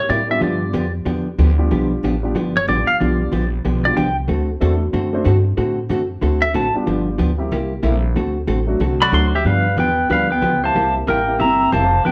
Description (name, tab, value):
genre	country, western swing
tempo	186 BPM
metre	4/4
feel	swing 62% on 8ths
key	G mixolydian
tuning	A4 = 441 Hz
part	pedal steel guitar	melody	0.0-4.2, 6.4-6.7, 9.0-12.1 s	F#4 to C6	-20 LUFS	equal	none
part	upright bass	bass	0.0-12.1 s	F1 to A2	-23 LUFS	equal	none
part	vintage hollow-body jazz guitar	accompaniment	0.1-12.1 s	C3 to A4	-24 LUFS	equal	none
part	dark upright piano	accompaniment	0.3-11.4 s	F#3 to C5	-27 LUFS	equal	none
part	breathy clarinet	second line	9.0-12.1 s	F3 to C4	-27 LUFS	equal	none
room	wet large studio reverb, RT60 0.9 s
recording	band playing live in one room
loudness	-18 LUFS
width	mono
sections	0.0-9.5 A section; 9.5-12.1 B section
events	pedal steel guitar solo 0.0-9.5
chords	0.4 G7; 4.3 D7; 6.9 G7; 7.5 C7; 8.2 D7; 9.5 G7; 10.8 C7